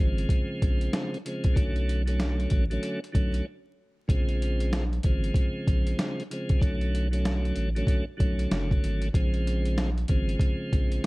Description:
hip hop, boom-bap hip-hop; 95 BPM; 4/4; swing 63% on 16ths; Bb minor; A4 = 442 Hz
tonewheel organ; accompaniment; 0.0-11.1 s; Db3 to Db4; -32 LUFS; equal; overdrive, slow rotary speaker, cassette tape, high-pass filter, low-pass filter
saturated sub bass; bass; 0.0-11.0 s; F#1 to B1; -28 LUFS; equal
boom bap sampler-style drum kit; drums; 0.2-11.1 s; hi-hat, kick drum, snare drum; -26 LUFS; equal
little or no reverb; dark, warm production, vinyl crackle; -24 LUFS; side -24 dB against mid
0.0-11.1 A section
break 3.5-4.1
0.0 Bbm7; 1.6 Bm7; 4.1 Bbm7; 6.6 Bm7; 9.1 Bbm7

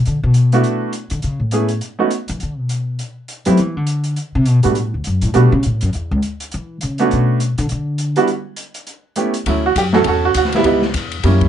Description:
jazz piano trio; 204 BPM; 4/4; swing 60% on 8ths; D major; A4 = 440 Hz
upright bass; bass; 0.0-11.5 s; C#2 to F#3; -16 LUFS; left 1 dB
open jazz drum kit; drums; 0.1-11.5 s; hi-hat, kick drum, ride cymbal, snare drum; -25 LUFS; left 3 dB
clear baby grand piano; melody; 0.5-11.5 s; F#3 to A4; -16 LUFS; right 4 dB
light reverb; dark, warm production, nothing above 10.8 kHz; -15 LUFS; side -10 dB against mid
0.1-9.5 A section; 9.5-11.5 B section
upright bass solo 0.0-9.5
0.1 D6; 1.2 Amaj9; 1.8 N.C.; 2.4 E7(no3) (rootless); 3.6 Dsus2; 4.2 N.C.; 4.8 Gmaj9 (rootless); 5.9 C#m; 7.1 Bm7; 8.3 N.C.; 8.9 A7; 9.5 Dmaj9; 10.6 C#m7b5

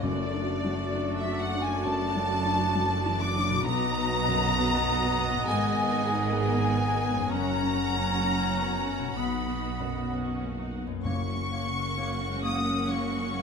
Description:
cinematic, emotional film score for orchestra; 66 BPM; 4/4; rubato; F# major; A4 = 440 Hz
warm symphonic violin section; melody; 0.0-13.4 s; D5 to D#6; -32 LUFS; left 3 dB
clear clarinet; second line; 0.0-13.4 s; A3 to C#4; -39 LUFS; left 2 dB
mellow hollow silver concert flute; second line; 0.0-13.4 s; D5 to D#6; -34 LUFS; left 1 dB
rich symphonic violin section; second line; 0.0-13.4 s; F#4 to F#5; -37 LUFS; left 2 dB
warm oboe; second line; 0.0-13.4 s; C#5 to D#5; -37 LUFS; right 4 dB
dark symphonic viola section; accompaniment; 0.0-13.4 s; F#3 to G#4; -35 LUFS; right 2 dB
felt-muted upright piano; accompaniment; 0.0-13.4 s; B1 to A#4; -34 LUFS; left 3 dB
concert harp; arpeggios; 0.0-13.4 s; F#2 to D#5; -38 LUFS; left 12 dB
bright symphonic double bass section; bass; 0.0-13.4 s; F#1 to B1; -33 LUFS; right 4 dB
warm studio cello section; bass; 0.0-13.4 s; F#2 to B2; -35 LUFS; right 4 dB
timpani; percussion; 0.0-1.4, 11.0-12.4 s; F#2; -38 LUFS; equal
moderate scoring stage reverb, RT60 1.9 s; close, detailed microphones; -25 LUFS; side -6 dB against mid
0.0-13.4 A section
0.0 D/F#; 3.7 B; 5.5 G#madd9; 7.3 F#; 9.2 B; 11.1 F#

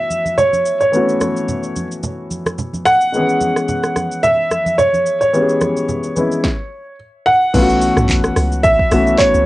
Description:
amapiano; 109 BPM; 4/4; swing 55% on 16ths; A4 = 439 Hz
warm concert grand piano; melody; 0.0-9.5 s; C#5 to F#5; -15 LUFS; right 1 dB; tape echo
warm grand piano; accompaniment; 0.0-9.5 s; D#3 to G#4; -19 LUFS; left 2 dB; cassette tape
deep house drum kit; drums; 0.1-9.5 s; crash cymbal, handclaps, hi-hat, kick drum, rim click, shaker, snare drum, toms; -20 LUFS; equal
congas; percussion; 0.1-6.3 s; -26 LUFS; right 2 dB
deep log drum bass; bass; 7.5-9.4 s; B1 to C#2; -19 LUFS; equal
light reverb; home recording on cassette, nothing above 10.4 kHz; -13 LUFS; side -17 dB against mid
0.0-7.5 A section; 7.5-9.5 B section
drop 7.5-9.5
0.0 B9sus4; 3.1 C#m7; 7.5 B9sus4

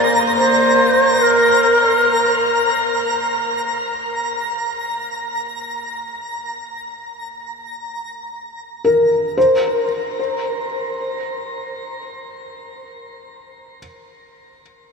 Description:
ambient; free time; A4 = 441 Hz
breathy shakuhachi; melody; 0.0-2.4 s; Bb4 to D5; -16 LUFS; equal; ping-pong delay
felt-muted upright piano; arpeggios; 0.0-14.9 s; Bb3 to Ab5; -20 LUFS; left 1 dB; ping-pong delay
twinkling granular texture; texture; 0.0-9.4 s; Bb5; -22 LUFS; equal; built-in reverb
wet shimmer reverb, RT60 7.6 s; -15 LUFS; side -4 dB against mid
0.0-9.4 A section; 9.4-12.6 B section
fade-out on synth texture 0.0-9.4
0.0 Bb5; 9.4 N.C.

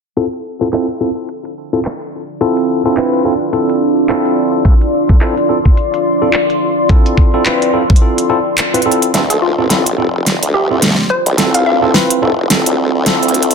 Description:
glitch hop; 107 BPM; 4/4; swing 58% on 16ths; D minor; A4 = 440 Hz
bright tine electric piano; stabs; 0.2-13.5 s; C4 to B4; -15 LUFS; equal; medium stereo tremolo, sidechain pumping, low-pass filter, ping-pong delay
pop drum kit; drums; 0.2-13.5 s; handclaps, hi-hat, snare drum; -16 LUFS; right 1 dB; low-pass filter on hats, small room ambience, low-pass filter on snare
deep dark ambient pad; texture; 2.2-13.5 s; D4 to C6; -18 LUFS; left 1 dB; chorus, built-in reverb, sidechain pumping
electronic kick drum; drums; 4.7-8.0 s; -9 LUFS; equal; small room ambience
formant-sweep wobble bass; bass; 9.1-13.5 s; F1 to D2; -17 LUFS; equal; chorus, high-pass filter
woody wave-folded pluck; melody; 9.3-12.1 s; F4 to F5; -18 LUFS; left 1 dB; chorus, ping-pong delay
moderate plate reverb, RT60 1.3 s, digital ambience; dense, heavily limited modern master, low-pass filter; -11 LUFS; side -6 dB against mid
0.2-9.1 A section; 9.1-13.5 B section
filter sweep on drum 0.2-9.1; filter sweep on tine electric piano 0.2-9.1; filter sweep 0.2-9.1; break 8.0-9.1; build-up 9.1-13.5; drum fill 9.1-13.5
0.2 Dm9

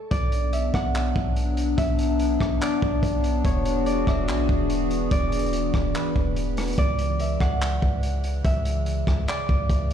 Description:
hip hop, atmospheric cloud-rap; 144 BPM; 4/4; half-time; B dorian; A4 = 437 Hz
Celtic harp; melody; 0.0-9.9 s; A4 to F#5; -30 LUFS; right 3 dB; low-pass filter, ping-pong delay
warbly tape-like pad; sustained chords; 0.1-9.9 s; C#3 to G#4; -27 LUFS; left 3 dB; chorus, built-in reverb, sidechain pumping
warm 808-style bass; bass; 0.1-9.9 s; E1 to C#2; -25 LUFS; equal
crunchy breakbeat drum kit; drums; 0.1-9.9 s; handclaps, hi-hat, kick drum, rim click; -26 LUFS; equal
studio ambience; played on a big sound system in a bare room, stone room reverb; -21 LUFS; side -9 dB against mid
0.1-9.9 A section
0.1 Bm; 3.4 E7; 6.8 C#m

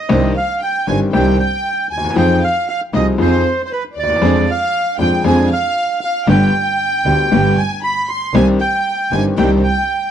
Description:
tango; 116 BPM; 4/4; rubato; C harmonic minor; A4 = 441 Hz
bandoneon; melody; 0.0-10.1 s; B4 to C6; -18 LUFS; right 4 dB
warm symphonic violin section; second line; 0.0-10.1 s; B4 to C6; -23 LUFS; left 5 dB
bright upright piano; accompaniment; 0.1-9.6 s; G1 to Ab4; -16 LUFS; left 5 dB
rich studio string section; stabs; 0.1-9.6 s; D4 to C5; -26 LUFS; right 5 dB
clear double bass; bass; 0.1-9.6 s; G1 to F2; -17 LUFS; right 3 dB
studio reverb; dry, close 1970s-style studio recording; -13 LUFS; side -9 dB against mid
0.1-10.1 A section
0.1 Cmadd9; 2.2 Fm7; 4.2 Ddim/F; 6.3 G; 8.3 Cmadd9

